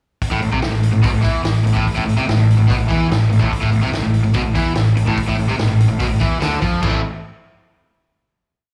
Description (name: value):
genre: classic rock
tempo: 145 BPM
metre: 4/4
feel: straight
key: A minor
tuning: A4 = 439 Hz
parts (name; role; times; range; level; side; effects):
- vintage drum kit; drums; 0.2-6.9 s; crash cymbal, hi-hat, kick drum, snare drum; -24 LUFS; equal; none
- cranked stack guitar; riff; 0.3-7.0 s; A2 to E4; -22 LUFS; equal; overdrive, spring reverb
- overdriven semi-hollow guitar; riff; 0.3-7.0 s; A2 to E4; -22 LUFS; equal; slapback echo
- fuzz fingered electric bass; bass; 0.3-7.0 s; A1 to F2; -24 LUFS; equal; overdrive
room: studio ambience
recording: live gig heard through the venue's PA, club reverb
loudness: -17 LUFS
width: mono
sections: 0.2-6.8 riff; 6.8-8.5 final chord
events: none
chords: 0.2 Am